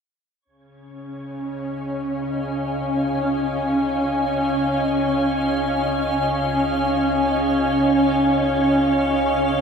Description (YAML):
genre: ambient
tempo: free time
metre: none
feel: none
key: Db major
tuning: A4 = 439 Hz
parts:
  - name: granular cloud pad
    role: sustained chords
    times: 1.1-9.6 s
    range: Db4 to Ab5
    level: -20 LUFS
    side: equal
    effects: built-in reverb, shimmer reverb
  - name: wind-like tuned noise texture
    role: texture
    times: 1.0-9.6 s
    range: Db5 to Db6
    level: -34 LUFS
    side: left 1 dB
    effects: built-in reverb, shimmer reverb
  - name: warm sub bass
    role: bass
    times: 0.5-9.6 s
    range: Db2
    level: -37 LUFS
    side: equal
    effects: tube saturation
  - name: bowed-like drone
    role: drone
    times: 0.9-9.6 s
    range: Db3 to Db4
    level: -27 LUFS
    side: left 1 dB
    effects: built-in reverb
room: wet huge ambient reverb, RT60 9.0 s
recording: none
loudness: -18 LUFS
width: side -6 dB against mid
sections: 0.4-9.6 A section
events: fade-in on sub bass 0.4-9.6; fade-in on synth texture 0.4-9.6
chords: 0.4 Dbadd9